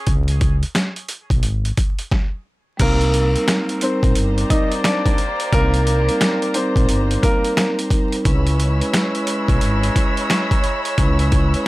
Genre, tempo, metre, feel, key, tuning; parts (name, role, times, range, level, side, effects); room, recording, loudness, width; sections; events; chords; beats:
hip hop, boom-bap hip-hop; 88 BPM; 4/4; swing 63% on 16ths; A4 = 440 Hz
growling FM bass; bass; 0.1-11.5 s; G1 to Db2; -18 LUFS; equal
boom bap sampler-style drum kit; drums; 0.1-11.7 s; crash cymbal, hi-hat, kick drum, snare drum; -19 LUFS; equal; overdrive
warm upright piano; melody; 2.8-7.8 s; Bb3 to Eb5; -23 LUFS; equal; high-pass filter, low-pass filter, tape echo
vibraphone with soft mallets; accompaniment; 2.8-11.7 s; G3 to Cb5; -23 LUFS; right 1 dB; cassette tape, high-pass filter, low-pass filter
rich studio string section; sustained chords; 2.8-11.7 s; C5 to Fb6; -28 LUFS; left 1 dB; high-pass filter, low-pass filter
dark trumpet section; stabs; 4.1-11.7 s; Ab3 to D5; -27 LUFS; equal; high-pass filter, low-pass filter, tape echo
little or no reverb; dry, gritty hardware recording, vinyl crackle; -16 LUFS; side -18 dB against mid
0.0-2.8 A section; 2.8-11.7 B section
break 0.1-2.8; stop 2.1-2.8
0.0 Db5; 2.8 Cm7; 8.3 Dbm7
| 0.07 0.75 1.43 2.12 | 2.80 3.48 4.16 4.84 | 5.53 6.21 6.89 7.57 | 8.25 8.93 9.62 10.30 | 10.98 11.66